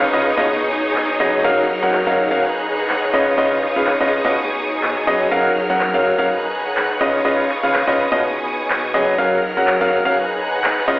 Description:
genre	piano house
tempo	124 BPM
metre	4/4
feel	swing 59% on 16ths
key	F# major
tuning	A4 = 441 Hz
part	clear symphonic violin section	sustained chords	0.0-11.0 s	A#4 to F#6	-23 LUFS	equal	none
part	bright upright piano	riff	0.0-11.0 s	B2 to F#5	-17 LUFS	equal	digital delay
part	rich studio string section	texture	0.0-11.0 s	B2 to F#5	-22 LUFS	equal	none
part	electronic handclaps	drums	1.0-10.9 s	none	-22 LUFS	equal	low-pass filter on snare
room	moderate plate reverb, RT60 1.1 s, studio reverb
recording	played on a big sound system in a bare room, large studio reverb, telephone sound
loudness	-15 LUFS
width	side -20 dB against mid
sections	0.0-11.0 A section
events	none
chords	0.5 B69; 1.4 F#maj7; 2.4 G#m9; 3.1 C#9; 4.3 B69; 5.3 F#maj7; 6.3 G#m9; 7.0 C#9; 8.2 B69; 9.2 F#maj7; 10.2 G#m9

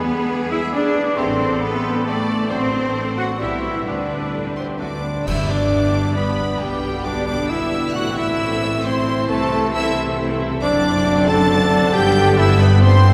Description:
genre	classical, dramatic, fast romantic movement for symphony orchestra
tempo	135 BPM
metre	3/4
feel	rubato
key	G major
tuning	A4 = 440 Hz
part	clear studio violin section	melody	0.0-13.1 s	F#4 to A6	-30 LUFS	equal	none
part	clear studio violin section	second line	0.0-13.1 s	G4 to A5	-30 LUFS	equal	none
part	mellow cor anglais	second line	0.0-13.1 s	G3 to A4	-28 LUFS	equal	none
part	mellow hollow silver concert flute	second line	0.0-13.1 s	G4 to F#6	-30 LUFS	equal	none
part	bright symphonic viola section	accompaniment	0.0-13.1 s	G3 to D5	-30 LUFS	equal	none
part	concert harp	arpeggios	0.0-13.1 s	F#2 to B5	-29 LUFS	equal	none
part	rich symphonic cello section	bass	0.0-13.1 s	F#2 to F#4	-26 LUFS	equal	none
part	rich symphonic double bass section	bass	0.0-13.1 s	F#1 to E2	-25 LUFS	equal	none
part	mellow French horn section	sustained chords	1.2-13.1 s	G3 to E5	-26 LUFS	equal	none
part	warm trombone section	sustained chords	1.2-13.1 s	D3 to C4	-33 LUFS	equal	none
part	clash cymbals and concert bass drum	percussion	5.3-6.1 s	none	-33 LUFS	equal	none
room	wet cathedral reverb, RT60 7.0 s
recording	none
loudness	-19 LUFS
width	mono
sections	0.0-5.3 A section; 5.3-13.1 B section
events	band accent 5.3-5.7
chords	0.0 E7; 1.2 Am7; 2.5 D7/A; 3.4 G/B; 3.9 G/D; 4.8 D; 5.3 G; 6.6 G/B; 8.0 Am; 9.3 Am/C; 10.6 D7/F#; 11.9 G

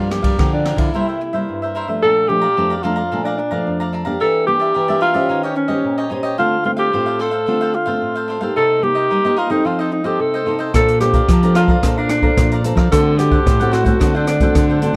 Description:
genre	samba and choro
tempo	110 BPM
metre	4/4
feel	straight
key	unclear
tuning	A4 = 442 Hz
part	breathy alto saxophone	melody	0.0-15.0 s	Db4 to A4	-20 LUFS	equal	none
part	cavaquinho	accompaniment	0.0-15.0 s	D4 to Bb5	-28 LUFS	equal	none
part	nylon-string guitar	accompaniment	0.0-15.0 s	F2 to C5	-24 LUFS	equal	none
part	nylon-string guitar	bass	0.0-0.9, 10.7-15.0 s	A2 to G3	-20 LUFS	equal	none
part	open jazz drum kit	drums	0.1-0.9, 10.7-14.9 s	hi-hat, kick drum, ride cymbal, rim click	-20 LUFS	equal	none
room	light reverb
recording	dark, warm production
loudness	-17 LUFS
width	mono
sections	0.0-2.0 A section; 2.0-15.0 B section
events	break 0.9-2.0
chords	0.0 Gm7; 0.9 C7; 2.0 Bbmaj7; 4.2 Em7b5; 5.3 Eb6; 6.4 Dm7; 8.6 Cm7; 9.7 F7; 10.7 Bbmaj9; 12.9 D7

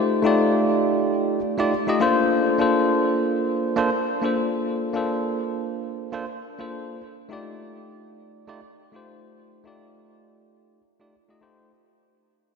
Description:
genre	chillout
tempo	102 BPM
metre	4/4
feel	swing 57% on 16ths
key	unclear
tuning	A4 = 435 Hz
part	barky tine electric piano	accompaniment	0.0-11.7 s	A3 to Eb5	-21 LUFS	moving between left 3 dB and right 5 dB	auto-pan, low-pass filter, diffuse ambient delay
room	wet lush hall reverb, RT60 3.4 s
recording	dreamy mix soaked in reverb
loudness	-20 LUFS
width	side -5 dB against mid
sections	0.0-11.7 A section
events	fade-out 0.0-11.7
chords	0.0 F13; 2.3 Bbmaj9; 7.0 F13

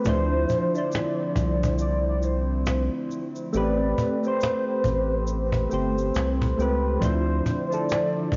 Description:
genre	lo-fi hip hop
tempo	69 BPM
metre	4/4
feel	swing 61% on 16ths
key	D minor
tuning	A4 = 437 Hz
part	soft electric-piano-like synth keys	accompaniment	0.0-8.4 s	F3 to C5	-29 LUFS	equal	chorus, phaser, cassette tape, low-pass filter
part	warbly tape-like pad	sustained chords	0.0-8.4 s	D3 to G4	-36 LUFS	equal	chorus, built-in reverb, low-pass filter
part	egg shaker	percussion	0.0-8.4 s	none	-51 LUFS	equal	none
part	warbly nostalgic lead	melody	0.1-8.4 s	C5 to D5	-32 LUFS	equal	chorus, low-pass filter, analog delay
part	round analog bass	bass	0.1-8.4 s	G1 to D2	-28 LUFS	equal	none
part	cajon	drums	0.1-8.4 s	none	-32 LUFS	equal	none
room	light reverb, studio ambience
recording	worn, warbling old tape, cassette tape, warbly pitch drift, nothing above 7.5 kHz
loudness	-25 LUFS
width	mono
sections	0.0-8.4 A section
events	none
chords	0.1 Dm9; 3.5 Am9; 7.0 Dm9

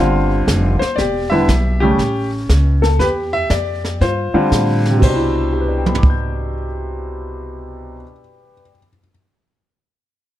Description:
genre	jazz piano trio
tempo	119 BPM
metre	4/4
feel	swing 67% on 8ths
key	C major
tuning	A4 = 443 Hz
part	clear upright piano	melody	0.0-9.1 s	B2 to G6	-18 LUFS	left 1 dB	plate reverb
part	upright bass	bass	0.0-8.0 s	E1 to A2	-19 LUFS	equal	none
part	jazz brush drum kit	drums	0.5-6.2 s	brushed snare drum, crash cymbal, hi-hat, kick drum, snare drum, toms	-19 LUFS	right 1 dB	none
room	light reverb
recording	dark, warm production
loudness	-14 LUFS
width	side -13 dB against mid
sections	0.0-5.0 A section; 5.0-9.1 B section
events	none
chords	0.0 G7sus4; 1.0 Em7; 2.0 A; 3.0 Em7; 4.0 G7sus4; 5.0 Cmaj9

